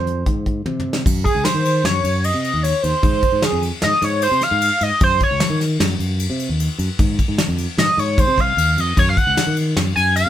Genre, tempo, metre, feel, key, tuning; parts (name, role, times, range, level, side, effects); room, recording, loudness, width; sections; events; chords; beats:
progressive instrumental, band music in an uneven meter; 152 BPM; 5/4; straight; A4 = 441 Hz
sync lead; melody; 0.0-10.3 s; Ab4 to Ab5; -18 LUFS; right 1 dB; chorus
modern bright fingered electric bass; bass; 0.0-10.3 s; C2 to Eb3; -21 LUFS; equal
soft brush drum kit; drums; 0.1-10.3 s; crash cymbal, hi-hat, kick drum, ride cymbal, snare drum, toms; -20 LUFS; equal
moderate studio reverb, RT60 0.5 s; band playing live in one room; -15 LUFS; side -11 dB against mid
0.0-1.1 A section; 1.1-10.3 B section
drum fill 0.7-1.1; analog synth lead solo 1.1-10.3
0.0 Ab; 1.1 Gb5; 3.0 Ab; 5.0 Gb5; 7.0 Ab; 9.0 Gb5
0.26 0.66 | 1.06 1.45 1.85 2.24 2.64 | 3.03 3.43 3.82 4.22 4.62 | 5.01 5.41 5.80 6.20 6.59 | 6.99 7.39 7.78 8.18 8.58 | 8.97 9.37 9.77 10.16